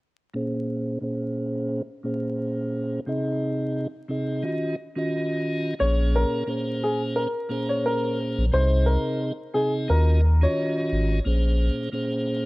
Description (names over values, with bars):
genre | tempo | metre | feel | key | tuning
hip hop, boom-bap hip-hop | 88 BPM | 4/4 | swing 55% on 16ths | Bb minor | A4 = 444 Hz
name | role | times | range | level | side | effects
tonewheel organ | accompaniment | 0.3-12.5 s | Bb2 to Eb5 | -26 LUFS | equal | slow rotary speaker, cassette tape, high-pass filter, low-pass filter
dark upright piano | melody | 5.8-10.7 s | Ab4 to Db5 | -26 LUFS | equal | high-pass filter, low-pass filter, ping-pong delay
warm sub bass | bass | 5.8-11.7 s | Ab1 to Eb2 | -20 LUFS | equal | tube saturation
room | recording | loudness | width
light reverb, small room reverb | worn, warbling old tape, cassette tape, vinyl crackle, warbly pitch drift | -22 LUFS | side -22 dB against mid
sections
0.3-5.8 A section; 5.8-12.5 B section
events
filter sweep on tonewheel organ 0.3-5.8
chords
0.3 Bbm7; 3.1 Ab/C; 4.4 Ebm7; 5.8 Bbm7; 8.5 Ab/C; 9.9 Ebm7; 11.3 Bbm7